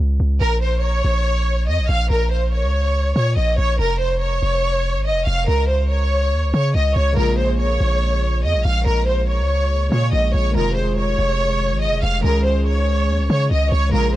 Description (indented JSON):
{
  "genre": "hip hop",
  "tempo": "142 BPM",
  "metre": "4/4",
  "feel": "half-time",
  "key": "Bb minor",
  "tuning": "A4 = 441 Hz",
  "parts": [
    { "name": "long sustained 808-style bass", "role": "bass", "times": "0.0-14.2 s", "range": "F1 to Db3", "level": "-18 LUFS", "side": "equal", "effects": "none" },
    { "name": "warm studio violin section", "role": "melody", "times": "0.4-14.2 s", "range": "Bb4 to F5", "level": "-21 LUFS", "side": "equal", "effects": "none" },
    { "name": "glassy digital keys", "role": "accompaniment", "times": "7.1-14.2 s", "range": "C3 to Ab4", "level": "-26 LUFS", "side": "equal", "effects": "chorus" }
  ],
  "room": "little or no reverb",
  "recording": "dry, gritty hardware recording, cassette tape",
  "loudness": "-16 LUFS",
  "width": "side -15 dB against mid",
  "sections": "0.0-14.2 A section",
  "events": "break 0.0-0.4",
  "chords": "0.4 Bbm; 3.8 N.C.; 7.2 Bbm7; 10.6 Fm7; 12.2 Dbadd9"
}